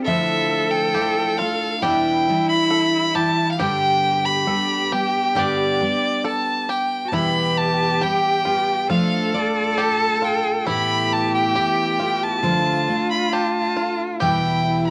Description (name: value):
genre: acoustic folk duo or small band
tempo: 68 BPM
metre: 4/4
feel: straight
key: D dorian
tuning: A4 = 440 Hz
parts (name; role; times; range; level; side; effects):
- picked twelve-string acoustic guitar; accompaniment; 0.0-14.9 s; E2 to G4; -26 LUFS; equal; cassette tape
- bluegrass banjo; arpeggios; 0.0-14.9 s; E4 to A4; -32 LUFS; equal; cassette tape
- clear fiddle; melody; 0.1-14.9 s; D5 to B5; -23 LUFS; equal; cassette tape
- warm cello; second line; 0.1-14.9 s; E4 to A4; -26 LUFS; equal; cassette tape
room: wet small room ambience, RT60 0.5 s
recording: home recording on cassette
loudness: -20 LUFS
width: mono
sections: 0.0-14.9 A section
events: none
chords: 0.1 Dmadd9; 1.8 Em7; 3.6 G; 7.1 Em; 8.9 Dm/F; 10.7 Asus2; 12.4 Dm; 14.2 Em